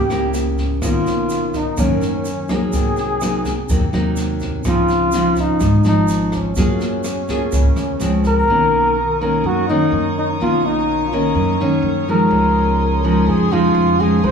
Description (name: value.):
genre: bossa nova.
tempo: 125 BPM.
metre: 4/4.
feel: straight.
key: unclear.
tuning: A4 = 438 Hz.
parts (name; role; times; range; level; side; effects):
breathy flugelhorn; melody; 0.0-14.3 s; Db4 to C5; -19 LUFS; left 1 dB; none.
nylon-string guitar; accompaniment; 0.0-14.3 s; Gb2 to Ab4; -18 LUFS; equal; none.
upright bass; bass; 0.0-14.3 s; Ab1 to Gb2; -23 LUFS; right 1 dB; none.
jazz brush drum kit; drums; 0.1-8.3 s; kick drum, rim click, snare drum; -24 LUFS; right 1 dB; none.
egg shaker; percussion; 0.1-8.5 s; none; -37 LUFS; right 4 dB; none.
warm studio violin section; sustained chords; 8.5-14.3 s; Db5 to Eb6; -27 LUFS; equal; none.
room: wet large studio reverb, RT60 1.1 s.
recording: band playing live in one room.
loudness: -15 LUFS.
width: side -6 dB against mid.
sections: 0.0-8.5 A section; 8.5-14.3 B section.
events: none.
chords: 0.0 Gb7b9 (rootless); 0.8 Cbmaj9; 2.7 Ab9/C; 4.7 Dbmaj9; 6.6 Gbmaj9; 8.0 Dbmaj7; 8.5 Cbmaj9; 12.3 Bbm11/Db.